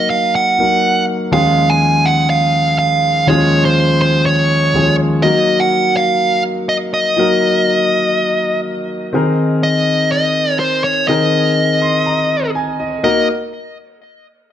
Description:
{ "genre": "pop", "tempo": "123 BPM", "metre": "4/4", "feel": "straight", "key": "Eb dorian", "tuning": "A4 = 440 Hz", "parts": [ { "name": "dark smooth lead guitar", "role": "melody", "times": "0.0-13.3 s", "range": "C5 to Ab5", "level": "-15 LUFS", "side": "right 1 dB", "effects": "overdrive" }, { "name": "warm concert grand piano", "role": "accompaniment", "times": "0.0-13.3 s", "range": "Eb2 to C6", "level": "-15 LUFS", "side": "left 1 dB", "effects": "none" } ], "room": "wet recital hall reverb, RT60 1.3 s", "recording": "none", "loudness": "-12 LUFS", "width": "side -10 dB against mid", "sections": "0.0-9.1 A section; 9.1-13.0 B section; 13.0-14.5 C section", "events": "grand piano fill 11.6-13.0", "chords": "0.0 Ebm; 1.3 Db/Eb; 5.2 Ebm; 9.1 Abadd9/Eb; 13.0 Ebm", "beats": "0.35 0.84 | 1.33 1.82 2.30 2.79 | 3.28 3.77 4.25 4.74 | 5.23 5.72 6.21 6.69 | 7.18 7.67 8.16 8.64 | 9.13 9.62 10.11 10.60 | 11.08 11.57 12.06 12.55 | 13.04" }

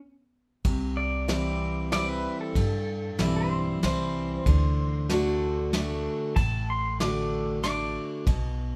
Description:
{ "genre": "honky-tonk and classic country", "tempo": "95 BPM", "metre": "3/4", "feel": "straight", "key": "D mixolydian", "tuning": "A4 = 441 Hz", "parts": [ { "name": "picked steel-string acoustic guitar", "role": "accompaniment", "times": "0.6-8.8 s", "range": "G2 to F#4", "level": "-31 LUFS", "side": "equal", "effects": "none" }, { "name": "upright bass", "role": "bass", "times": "0.6-8.8 s", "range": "A1 to G2", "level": "-32 LUFS", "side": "equal", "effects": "none" }, { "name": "vintage brush drum kit", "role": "drums", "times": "0.6-8.4 s", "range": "kick drum, ride cymbal, snare drum", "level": "-33 LUFS", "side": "equal", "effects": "none" }, { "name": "pedal steel guitar", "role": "melody", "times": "1.0-8.3 s", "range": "A4 to D6", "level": "-35 LUFS", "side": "equal", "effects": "none" } ], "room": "light reverb", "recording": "none", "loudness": "-27 LUFS", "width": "mono", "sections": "0.7-8.8 A section", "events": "stop 0.0-0.7; pedal steel guitar solo 0.7-8.8", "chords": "0.0 N.C.; 0.7 C; 4.5 D", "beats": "0.02 | 0.66 1.29 1.93 | 2.56 3.20 3.83 | 4.46 5.10 5.73 | 6.37 7.00 7.64 | 8.27" }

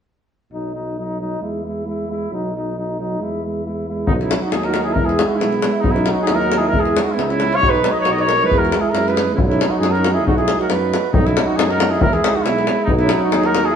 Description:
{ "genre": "balkan folk, Balkan brass band", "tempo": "136 BPM", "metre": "2/4", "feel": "swing 55% on 16ths", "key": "B major", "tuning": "A4 = 441 Hz", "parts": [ { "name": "bright trombone", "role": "accompaniment", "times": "0.5-13.8 s", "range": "D#4 to E4", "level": "-25 LUFS", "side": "left 2 dB", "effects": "none" }, { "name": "dark euphonium", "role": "accompaniment", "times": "0.5-13.8 s", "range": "F#3 to G#3", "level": "-24 LUFS", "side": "right 3 dB", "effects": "none" }, { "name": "dark tuba", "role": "bass", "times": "0.5-13.8 s", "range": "B1 to F#2", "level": "-24 LUFS", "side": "equal", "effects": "none" }, { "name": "warm cornet", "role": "melody", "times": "4.1-13.8 s", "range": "D#4 to D#5", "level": "-20 LUFS", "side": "right 1 dB", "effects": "none" }, { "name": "mellow alto saxophone", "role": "second line", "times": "4.1-13.8 s", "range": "B3 to B4", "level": "-24 LUFS", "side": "right 5 dB", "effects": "none" }, { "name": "davul", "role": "percussion", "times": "4.1-13.7 s", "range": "none", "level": "-20 LUFS", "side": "left 3 dB", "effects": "none" } ], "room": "wet stone room reverb, RT60 1.2 s", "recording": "band playing live in one room", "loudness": "-15 LUFS", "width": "side -8 dB against mid", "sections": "0.5-4.1 A section; 4.1-11.1 B section; 11.1-13.8 B section", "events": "none", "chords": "0.5 B; 1.4 E; 2.3 B; 3.2 E; 4.1 B; 5.0 E; 5.9 B; 6.7 E; 7.6 B; 8.5 E; 9.4 B; 12.0 E; 12.9 B", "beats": "| 0.53 0.98 | 1.43 1.88 | 2.32 2.77 | 3.21 3.66 | 4.10 4.54 | 4.99 5.43 | 5.87 6.31 | 6.75 7.19 | 7.63 8.07 | 8.51 8.95 | 9.39 9.83 | 10.26 10.70 | 11.14 11.58 | 12.02 12.45 | 12.89 13.33" }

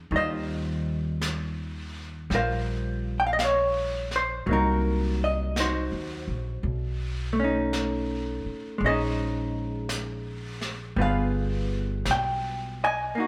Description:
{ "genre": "jazz ballad", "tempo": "55 BPM", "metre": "4/4", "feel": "swing 67% on 8ths", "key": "unclear", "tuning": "A4 = 442 Hz", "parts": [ { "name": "hollow-body jazz guitar", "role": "accompaniment", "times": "0.0-13.3 s", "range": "Eb3 to Ab5", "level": "-29 LUFS", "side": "equal", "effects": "none" }, { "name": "upright bass", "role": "bass", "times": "0.0-13.1 s", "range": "G1 to Eb2", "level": "-32 LUFS", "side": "equal", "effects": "none" }, { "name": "vintage brush drum kit", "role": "drums", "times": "0.1-13.3 s", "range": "brushed snare drum, hi-hat, snare drum", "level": "-39 LUFS", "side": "equal", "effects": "none" } ], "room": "moderate stone room reverb, RT60 1.2 s", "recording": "band playing live in one room", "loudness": "-28 LUFS", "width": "mono", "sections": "0.0-13.3 A section", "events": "none", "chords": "0.1 Eb69; 4.5 Cm7b5; 6.6 B9; 8.8 Bbm11; 11.0 G7b9", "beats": "| 0.12 1.21 2.31 3.39 | 4.47 5.56 6.64 7.73 | 8.81 9.89 10.98 12.06 | 13.16" }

